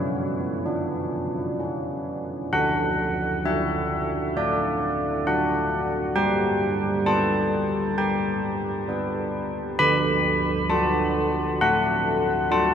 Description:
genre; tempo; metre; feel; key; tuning
classical, tune for church bells; 66 BPM; 4/4; straight; D major; A4 = 444 Hz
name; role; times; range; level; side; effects
carillon bells; solo; 0.0-12.7 s; D3 to B5; -21 LUFS; equal; none
room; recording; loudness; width
wet huge ambient reverb, RT60 8.7 s; in a vast, echoing space; -22 LUFS; side -8 dB against mid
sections
0.0-2.5 A section; 2.5-12.7 B section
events
none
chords
0.0 Bm; 2.5 D; 6.2 G; 9.8 D

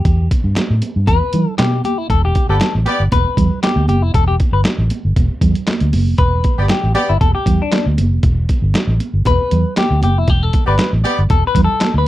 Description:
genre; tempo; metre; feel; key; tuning
funk; 117 BPM; 4/4; straight; E minor; A4 = 440 Hz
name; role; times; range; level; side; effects
semi-hollow electric guitar; accompaniment; 0.0-12.1 s; D4 to B4; -19 LUFS; left 4 dB; wide subtle chorus
vintage muted fingered electric bass; bass; 0.0-12.0 s; E1 to E3; -15 LUFS; equal; none
trip hop sampler-style drum kit; drums; 0.1-11.9 s; handclaps, hi-hat, kick drum, snare drum; -17 LUFS; equal; none
congas; percussion; 0.1-11.9 s; none; -23 LUFS; right 4 dB; none
warm horn section; second line; 2.5-3.0, 6.6-7.1, 10.7-11.2 s; B3 to D5; -18 LUFS; equal; none
room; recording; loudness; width
little or no reverb; dry, close 1970s-style studio recording; -13 LUFS; side -15 dB against mid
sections
0.0-12.1 A section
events
clean electric guitar solo 0.0-12.1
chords
0.0 Em

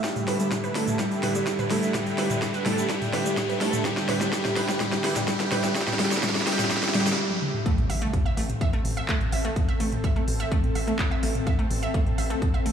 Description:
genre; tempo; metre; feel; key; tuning
melodic techno; 126 BPM; 4/4; straight; A minor; A4 = 440 Hz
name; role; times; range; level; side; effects
resonant sweep polysynth; melody; 0.0-7.2 s; G3 to A4; -29 LUFS; right 1 dB; chorus, cassette tape, sidechain pumping, analog delay
lush unison pad; sustained chords; 0.0-7.1 s; D3 to E4; -33 LUFS; right 1 dB; chorus, sidechain pumping
analog pluck; arpeggios; 0.0-12.7 s; G3 to E5; -30 LUFS; equal; chorus, cassette tape, sidechain pumping, analog delay
electronic kick drum; drums; 0.0-12.5 s; none; -26 LUFS; equal; high-pass filter on kick
techno drum kit; drums; 0.0-12.7 s; handclaps, hi-hat, snare drum, toms; -29 LUFS; equal; none
tube shaker; percussion; 0.0-7.2 s; none; -40 LUFS; right 3 dB; none
riser and impact; sound effects; 0.0-9.6 s; none; -33 LUFS; equal; none
ethereal airy pad; texture; 0.0-12.7 s; C4 to E5; -34 LUFS; left 1 dB; ensemble chorus, built-in reverb, sidechain pumping
round analog bass; bass; 0.3-12.7 s; A1; -32 LUFS; equal; sidechain pumping, high-pass filter
room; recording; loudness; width
wet church reverb, RT60 3.0 s; dreamy mix soaked in reverb, studio reverb; -22 LUFS; side -8 dB against mid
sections
0.0-7.7 A section; 7.7-12.7 B section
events
build-up 0.0-7.7; drum fill 0.0-7.2, 7.3-7.7; riser 0.0-7.2; filter sweep on analog polysynth 0.0-7.7; stop 7.2-7.7; drop 7.7-12.7; impact 7.7-9.6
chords
0.0 Em7/A; 7.7 Am

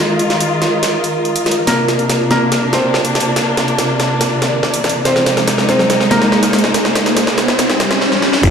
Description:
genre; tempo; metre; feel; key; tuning
heavy wobble dubstep; 142 BPM; 4/4; half-time; unclear; A4 = 440 Hz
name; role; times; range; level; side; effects
dark symphonic string section; sustained chords; 0.0-8.0 s; C3 to F4; -18 LUFS; equal; sidechain pumping, low-pass filter
granular cloud pad; texture; 0.0-8.0 s; Eb4 to Eb5; -20 LUFS; right 1 dB; built-in reverb, sidechain pumping
dubstep drum kit; drums; 0.2-8.5 s; crash cymbal, hi-hat, snare drum; -17 LUFS; equal; overdrive, high-pass filter on snare, high-pass filter on hats, high-pass filter on cymbals, high-pass filter on room
felt-muted upright piano; melody; 1.7-6.7 s; Bb3 to C5; -17 LUFS; equal; low-pass filter, tape echo
riser and swell; sound effects; 3.5-8.4 s; none; -19 LUFS; equal; none
growl bass; bass; 8.4-8.5 s; G1; -12 LUFS; equal; chorus, overdrive
electronic kick drum; drums; 8.4-8.5 s; none; -11 LUFS; equal; none
room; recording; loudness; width
moderate lush hall reverb, RT60 1.8 s, digital ambience; played on a big sound system in a bare room, stone room reverb; -12 LUFS; side -7 dB against mid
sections
0.0-8.4 A section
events
build-up 0.0-8.4; drum fill 0.0-8.0, 8.0-8.4; filter sweep on felt piano 0.0-8.4; riser 3.5-8.4; swell 7.6-8.4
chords
0.0 Fm7; 1.7 Bbadd9; 5.1 Ab

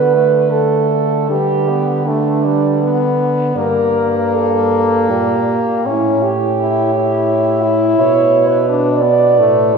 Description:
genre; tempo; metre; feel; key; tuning
classical, lyrical piece for horn quartet; 76-87 BPM; 3/4; rubato; unclear; A4 = 440 Hz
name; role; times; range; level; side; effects
warm French horn; melody; 0.0-9.8 s; A4 to D5; -23 LUFS; left 4 dB; none
warm French horn; second line; 0.0-9.8 s; D4 to D5; -15 LUFS; right 5 dB; none
clear French horn; accompaniment; 0.0-9.8 s; G3 to E4; -18 LUFS; left 3 dB; none
warm French horn; bass; 0.0-9.8 s; G2 to D3; -20 LUFS; equal; none
room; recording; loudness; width
wet concert hall reverb, RT60 2.0 s; recorded in a church or concert hall; -12 LUFS; side -5 dB against mid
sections
0.0-9.8 A section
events
none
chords
0.0 D5; 1.3 G/D; 3.6 Gm; 5.8 A7; 8.0 Bm

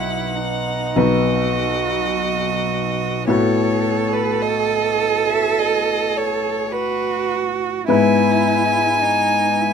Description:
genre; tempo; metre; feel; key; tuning
classical, slow romantic movement for piano trio; 52 BPM; 4/4; rubato; B major; A4 = 439 Hz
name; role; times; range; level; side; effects
clear violin; melody; 0.0-9.7 s; B4 to G#5; -22 LUFS; left 2 dB; none
rich cello; second line; 0.0-9.7 s; D#4 to A4; -21 LUFS; right 8 dB; none
bright grand piano; accompaniment; 0.0-9.7 s; B1 to B4; -20 LUFS; left 2 dB; none
room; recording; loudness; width
light reverb; close, detailed microphones; -16 LUFS; side -6 dB against mid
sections
0.0-9.7 A section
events
none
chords
0.0 B; 3.3 B5/A; 7.9 E/G#

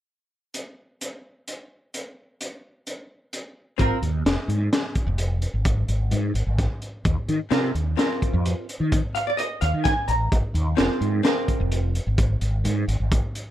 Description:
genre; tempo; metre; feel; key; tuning
progressive instrumental, band music in an uneven meter; 129 BPM; 7/4; straight; Ab major; A4 = 439 Hz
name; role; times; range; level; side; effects
crunchy breakbeat drum kit; drums; 0.5-13.5 s; hi-hat, kick drum, snare drum; -25 LUFS; equal; none
archtop guitar, miked and amplified; accompaniment; 3.8-11.9 s; C4 to Bb5; -25 LUFS; equal; double-tracked left and right
mellow fretless electric bass; bass; 3.8-13.2 s; F1 to Eb3; -23 LUFS; equal; ensemble chorus
room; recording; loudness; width
light reverb; dark, warm production; -21 LUFS; side -12 dB against mid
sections
0.5-3.8 A section; 3.8-13.5 B section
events
hollow-body jazz guitar fill 8.9-10.3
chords
0.5 N.C.; 7.1 Ebsus2; 10.3 Absus2

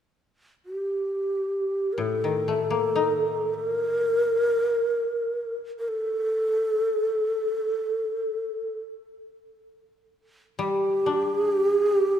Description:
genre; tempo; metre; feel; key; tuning
japanese traditional, Japanese chamber music; free time; none; none; unclear; A4 = 440 Hz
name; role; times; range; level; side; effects
breathy mellow long shakuhachi; melody; 0.7-12.2 s; G4 to Bb4; -23 LUFS; equal; none
koto; accompaniment; 2.0-4.8, 10.6-12.2 s; A2 to Eb4; -30 LUFS; left 3 dB; none
room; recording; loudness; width
wet church reverb, RT60 3.2 s; minimal, uncompressed stereo recording; -23 LUFS; side -9 dB against mid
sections
0.0-12.2 A section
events
none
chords
none

